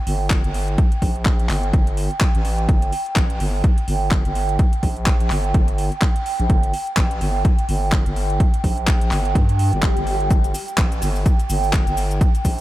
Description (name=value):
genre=bass house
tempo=126 BPM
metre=4/4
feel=swing 57% on 16ths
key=G minor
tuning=A4 = 440 Hz
part: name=warbly tape-like pad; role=texture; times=0.0-12.6 s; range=G5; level=-27 LUFS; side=right 3 dB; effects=chorus, built-in reverb, sidechain pumping
part: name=growling FM bass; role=bass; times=0.1-12.6 s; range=G1 to G2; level=-22 LUFS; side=equal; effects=overdrive, sidechain pumping
part: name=garage drum kit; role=drums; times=0.1-12.6 s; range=cabasa, handclaps, hi-hat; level=-28 LUFS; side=left 1 dB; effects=none
part: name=electronic kick drum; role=drums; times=0.3-12.6 s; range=none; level=-17 LUFS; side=equal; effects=none
part: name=swell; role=sound effects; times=9.5-10.3 s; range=none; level=-32 LUFS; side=left 1 dB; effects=none
room=light reverb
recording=none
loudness=-17 LUFS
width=side -16 dB against mid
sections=0.0-12.6 A section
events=swell 9.5-10.3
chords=0.0 Gm